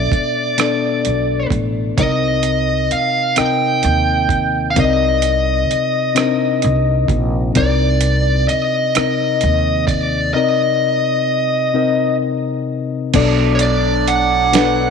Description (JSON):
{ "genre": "slow six-eight R&B", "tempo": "43 BPM (dotted quarters)", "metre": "6/8", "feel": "straight", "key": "unclear", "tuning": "A4 = 440 Hz", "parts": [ { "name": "smooth overdriven lead guitar", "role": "melody", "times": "0.0-14.9 s", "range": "C#5 to G5", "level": "-17 LUFS", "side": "right 1 dB", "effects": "slapback echo" }, { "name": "reed electric piano", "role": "accompaniment", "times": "0.0-14.9 s", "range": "B2 to E5", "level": "-19 LUFS", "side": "left 8 dB", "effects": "none" }, { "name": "upright bass", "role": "bass", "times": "0.0-14.9 s", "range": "A1 to Eb2", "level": "-19 LUFS", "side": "right 2 dB", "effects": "none" }, { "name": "dusty soul sampler-style drum kit", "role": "drums", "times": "0.1-14.8 s", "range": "crash cymbal, hi-hat, kick drum, rim click, snare drum", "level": "-20 LUFS", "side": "right 5 dB", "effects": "none" }, { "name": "mellow horn section", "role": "stabs", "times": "13.1-14.9 s", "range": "A2 to D4", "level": "-23 LUFS", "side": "right 10 dB", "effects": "none" } ], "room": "light reverb", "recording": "1960s-style stereo with parts hard left and right", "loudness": "-14 LUFS", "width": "side -6 dB against mid", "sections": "0.0-13.1 A section; 13.1-14.9 B section", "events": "none", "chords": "0.0 Bm9; 2.0 Cm9; 13.1 Bm7", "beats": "0.58 | 1.98 3.37 | 4.77 6.16 | 7.56 8.95 | 10.35 11.74 | 13.14 14.53" }